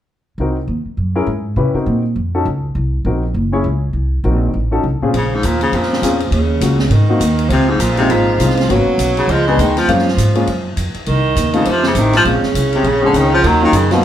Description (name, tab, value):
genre	jazz, small-group swing and bop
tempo	202 BPM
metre	4/4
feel	swing 60% on 8ths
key	Bb minor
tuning	A4 = 440 Hz
part	warm baby grand piano	accompaniment	0.4-14.0 s	Bb2 to Db5	-18 LUFS	left 2 dB	none
part	upright bass	bass	0.4-14.0 s	Gb1 to C3	-16 LUFS	equal	none
part	clear tenor saxophone	second line	5.1-14.0 s	C3 to Ab3	-19 LUFS	right 3 dB	none
part	open jazz drum kit	drums	5.1-14.0 s	hi-hat, ride cymbal, snare drum	-24 LUFS	right 1 dB	none
part	warm baritone saxophone	melody	5.2-14.0 s	Ab2 to Gb3	-16 LUFS	left 1 dB	none
room	wet studio reverb, RT60 0.8 s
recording	heard from further back in the room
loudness	-13 LUFS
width	side -11 dB against mid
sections	0.4-5.1 A section; 5.1-14.0 B section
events	none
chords	0.4 Cm7b5; 1.0 Gb9; 1.6 Cm7b5; 2.2 F7b9b13; 2.8 Cm7b5; 3.4 Gbsus2; 4.0 Cm7b5; 4.5 F7b9b13; 5.1 Bbm7; 6.3 Ebm9; 6.9 Ab9; 7.5 Dbmaj9; 8.7 Abm11; 9.3 Db5; 9.9 Gbmaj7; 11.1 Cmadd11; 11.7 F; 12.3 Bbm7; 13.4 Ebm7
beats	| 0.39 0.69 0.98 1.28 | 1.58 1.88 2.17 2.47 | 2.77 3.06 3.36 3.66 | 3.96 4.25 4.55 4.84 | 5.14 5.44 5.74 6.03 | 6.33 6.62 6.92 7.22 | 7.51 7.81 8.11 8.40 | 8.70 9.00 9.29 9.59 | 9.89 10.18 10.48 10.78 | 11.07 11.37 11.67 11.96 | 12.26 12.55 12.85 13.15 | 13.44 13.74 14.04